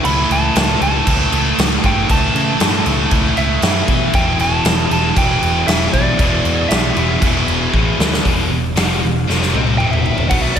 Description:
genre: hard rock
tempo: 117 BPM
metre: 4/4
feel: straight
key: E minor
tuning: A4 = 441 Hz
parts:
  - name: high-gain distorted guitar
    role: riff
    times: 0.0-10.6 s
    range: E2 to C4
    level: -20 LUFS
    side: left 9 dB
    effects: distortion
  - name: raw garage guitar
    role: riff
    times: 0.0-10.6 s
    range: E2 to B3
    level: -24 LUFS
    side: right 1 dB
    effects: overdrive, slapback echo
  - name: scooped high-gain guitar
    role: riff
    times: 0.0-10.6 s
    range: E2 to C4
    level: -22 LUFS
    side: right 9 dB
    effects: distortion, slapback echo
  - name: picked electric bass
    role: bass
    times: 0.0-10.6 s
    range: E1 to C#3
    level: -20 LUFS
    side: equal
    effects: none
  - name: big rock drum kit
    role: drums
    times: 0.0-10.6 s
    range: crash cymbal, hi-hat, kick drum, ride cymbal, snare drum, toms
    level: -17 LUFS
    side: equal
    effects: none
  - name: lightly driven lead guitar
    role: melody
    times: 0.1-10.6 s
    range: D5 to B5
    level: -21 LUFS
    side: right 2 dB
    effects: digital delay
room: moderate lush hall reverb, RT60 1.6 s, small room ambience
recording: big arena sound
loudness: -13 LUFS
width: side -8 dB against mid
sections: 0.0-8.2 A section; 8.2-10.3 B section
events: drum fill 7.7-8.2, 9.3-10.3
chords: 0.0 A; 4.1 E5; 8.2 Em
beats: | 0.04 0.56 1.07 1.58 | 2.09 2.60 3.12 3.63 | 4.14 4.65 5.17 5.68 | 6.19 6.71 7.22 7.73 | 8.25 8.76 9.28 9.79 | 10.31

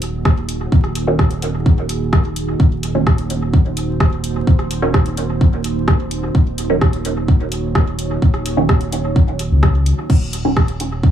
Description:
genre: dub techno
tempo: 128 BPM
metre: 4/4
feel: straight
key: Eb dorian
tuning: A4 = 440 Hz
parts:
  - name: deep dark ambient pad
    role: sustained chords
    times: 0.0-11.1 s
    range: Bb3 to Db5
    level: -24 LUFS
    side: right 3 dB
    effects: chorus, built-in reverb, sidechain pumping
  - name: pure sine sub bass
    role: bass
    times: 0.0-11.1 s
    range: Eb1 to Db2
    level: -21 LUFS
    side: equal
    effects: tube saturation, sidechain pumping
  - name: deep house drum kit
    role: drums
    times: 0.0-10.9 s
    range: crash cymbal, hi-hat, rim click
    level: -24 LUFS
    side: equal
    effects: small room ambience, dub echo
  - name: electronic kick drum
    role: drums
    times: 0.3-11.1 s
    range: none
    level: -13 LUFS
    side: equal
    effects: small room ambience
  - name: filtered dub chord stab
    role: stabs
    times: 1.1-10.6 s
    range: Eb3 to Db4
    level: -22 LUFS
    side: right 2 dB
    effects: phaser, sidechain pumping, dub echo
room: light reverb, digital ambience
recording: echo-heavy mix, vinyl crackle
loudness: -14 LUFS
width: side -10 dB against mid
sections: 0.0-10.1 A section; 10.1-11.1 A section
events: filter sweep on synth stab 10.1-11.1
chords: 0.0 Ebm7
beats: 0.25 | 0.72 1.19 1.66 2.13 | 2.60 3.07 3.54 4.00 | 4.47 4.94 5.41 5.88 | 6.35 6.82 7.29 7.75 | 8.22 8.69 9.16 9.63 | 10.10 10.57 11.04

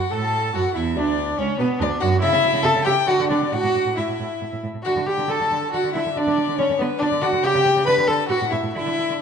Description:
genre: quick classical-period movement for string quartet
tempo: 140 BPM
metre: 3/4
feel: rubato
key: D major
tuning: A4 = 442 Hz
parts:
  - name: warm violin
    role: melody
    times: 0.0-9.2 s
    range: B4 to B5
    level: -24 LUFS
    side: left 9 dB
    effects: none
  - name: warm violin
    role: second line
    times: 0.0-9.2 s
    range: B3 to B4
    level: -24 LUFS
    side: left 2 dB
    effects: none
  - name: warm viola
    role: accompaniment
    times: 0.0-9.2 s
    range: B3 to B4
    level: -23 LUFS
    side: right 4 dB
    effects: none
  - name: rich cello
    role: bass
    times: 0.0-9.1 s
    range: C#2 to D3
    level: -26 LUFS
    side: right 4 dB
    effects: none
room: moderate scoring stage reverb, RT60 1.8 s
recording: dark, warm production, nothing above 10.4 kHz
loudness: -18 LUFS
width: side -7 dB against mid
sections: 0.0-9.2 A section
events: none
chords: 0.0 Esus24; 1.0 Bmadd9; 2.2 A7/C#; 3.1 D; 3.5 A5; 4.9 D5; 7.4 N.C.; 7.9 D5; 8.3 A5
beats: 0.12 0.55 | 0.97 1.39 1.81 | 2.22 2.64 3.08 | 3.52 3.97 4.41 | 4.85 5.29 5.73 | 6.16 6.58 7.00 | 7.43 7.86 8.29 | 8.75 9.21

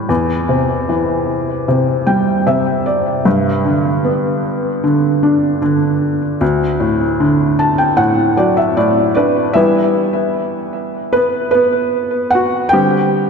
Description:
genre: pop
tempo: 76 BPM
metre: 4/4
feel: straight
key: E minor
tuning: A4 = 439 Hz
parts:
  - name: felt-muted upright piano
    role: solo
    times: 0.0-13.3 s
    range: D2 to A5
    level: -12 LUFS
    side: equal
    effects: ping-pong delay
room: wet lush hall reverb, RT60 2.8 s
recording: dreamy mix soaked in reverb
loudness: -12 LUFS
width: side -5 dB against mid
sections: 0.0-9.6 A section; 9.6-13.3 B section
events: felt piano fill 1.7-3.3, 7.2-9.6; felt piano solo 9.6-13.3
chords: 0.1 C/E; 3.3 G; 6.4 D; 9.6 Emadd9; 12.7 D7sus4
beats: | 0.10 0.89 1.68 2.46 | 3.25 4.04 4.83 5.62 | 6.41 7.20 7.99 8.78 | 9.57 10.36 11.15 11.94 | 12.73

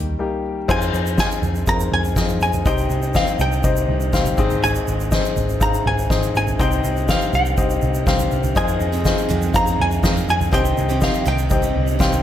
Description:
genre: piano-driven pop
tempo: 122 BPM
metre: 4/4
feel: straight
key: F minor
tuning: A4 = 440 Hz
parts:
  - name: archtop guitar, miked and amplified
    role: melody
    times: 0.0-12.2 s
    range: G4 to Bb5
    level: -24 LUFS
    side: equal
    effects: lush chorus, diffuse ambient delay
  - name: warm upright piano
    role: accompaniment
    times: 0.0-12.2 s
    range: Ab2 to F5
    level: -23 LUFS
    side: left 5 dB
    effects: none
  - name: vintage muted picked electric bass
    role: bass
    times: 0.0-12.2 s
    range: Ab1 to F2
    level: -22 LUFS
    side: right 1 dB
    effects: none
  - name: soft-mallet drum kit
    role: drums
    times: 0.7-12.2 s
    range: crash cymbal, kick drum, ride cymbal, snare drum, toms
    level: -22 LUFS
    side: right 1 dB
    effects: none
  - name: tube shaker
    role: percussion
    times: 0.7-12.2 s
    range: none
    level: -36 LUFS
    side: right 8 dB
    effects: none
  - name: picked steel-string acoustic guitar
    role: riff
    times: 8.6-12.2 s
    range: F2 to Ab4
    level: -26 LUFS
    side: right 7 dB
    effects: none
room: moderate plate reverb, RT60 1.6 s, studio ambience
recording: dreamy mix soaked in reverb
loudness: -17 LUFS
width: side -11 dB against mid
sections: 0.7-12.2 A section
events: none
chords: 0.0 Eb; 0.7 Fm7; 2.7 Cm; 4.4 Ab; 6.6 Cm; 8.6 Fm7; 10.5 Cm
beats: 0.20 | 0.69 1.18 1.68 2.17 | 2.66 3.15 3.64 4.13 | 4.63 5.12 5.61 6.10 | 6.59 7.08 7.58 8.07 | 8.56 9.05 9.54 10.04 | 10.53 11.02 11.51 12.00

